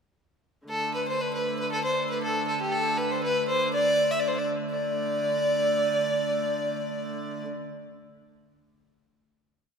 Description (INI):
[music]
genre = medieval dance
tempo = 119 BPM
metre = 2/4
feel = straight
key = unclear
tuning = A4 = 439 Hz
[part]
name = rich fiddle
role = melody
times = 0.7-7.5 s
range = G4 to E5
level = -25 LUFS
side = equal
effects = none
[part]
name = rich hurdy-gurdy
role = drone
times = 0.7-7.5 s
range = D3 to A3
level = -32 LUFS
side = right 2 dB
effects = none
[sound]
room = wet concert hall reverb, RT60 2.1 s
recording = recorded in a church or concert hall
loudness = -24 LUFS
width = side -6 dB against mid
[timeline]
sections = 0.7-4.7 A section; 4.7-6.7 final chord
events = none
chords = none